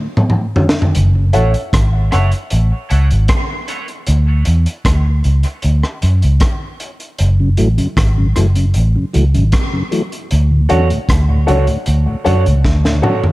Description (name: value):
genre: dub reggae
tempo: 77 BPM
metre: 4/4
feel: straight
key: F# minor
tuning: A4 = 440 Hz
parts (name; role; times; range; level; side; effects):
- mellow tonewheel organ; accompaniment; 0.0-13.1 s; D2 to C#4; -20 LUFS; left 1 dB; overdrive, chorus vibrato, slow rotary speaker, high-pass filter
- crunchy breakbeat drum kit; drums; 0.2-13.3 s; hi-hat, kick drum, rim click, snare drum, toms; -17 LUFS; equal; none
- vintage muted fingered electric bass; bass; 1.0-13.0 s; F#1 to F#2; -12 LUFS; equal; none
- electric guitar through a small old amp; accompaniment; 1.3-3.9, 10.7-13.2 s; E4 to C#5; -23 LUFS; right 7 dB; high-pass filter, dub echo
- warm upright piano; stabs; 1.3-3.8, 10.7-13.2 s; A4 to F#5; -22 LUFS; left 3 dB; high-pass filter, dub echo
room: small room ambience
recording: dark, warm production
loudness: -12 LUFS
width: side -19 dB against mid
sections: 0.0-13.3 A section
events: break 0.0-0.9; drum fill 0.0-0.9, 12.6-13.3; filter sweep 0.0-7.2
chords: 0.0 Dmaj7; 0.9 F#m7; 4.1 Dmaj7; 7.2 F#m7; 10.3 Dmaj7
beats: 0.17 | 0.95 1.73 2.51 3.29 | 4.07 4.85 5.63 6.41 | 7.19 7.97 8.75 9.53 | 10.31 11.09 11.86 12.64